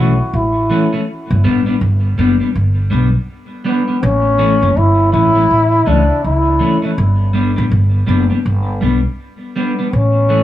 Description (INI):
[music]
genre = roots reggae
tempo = 81 BPM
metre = 4/4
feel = swing 62% on 16ths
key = unclear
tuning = A4 = 441 Hz
[part]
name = warm trombone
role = melody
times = 0.0-10.4 s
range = B3 to F#4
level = -15 LUFS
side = equal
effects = tape echo
[part]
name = clean electric guitar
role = accompaniment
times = 0.0-10.4 s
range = E3 to D4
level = -18 LUFS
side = left 1 dB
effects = wide subtle chorus, tape echo
[part]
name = upright bass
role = bass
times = 0.0-10.4 s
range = F#1 to C#2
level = -14 LUFS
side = equal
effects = none
[sound]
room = light reverb, small room ambience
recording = none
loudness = -12 LUFS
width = side -13 dB against mid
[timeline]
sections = 0.0-10.4 A section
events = none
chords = 0.0 A; 1.1 G; 4.0 A; 7.0 G; 9.9 A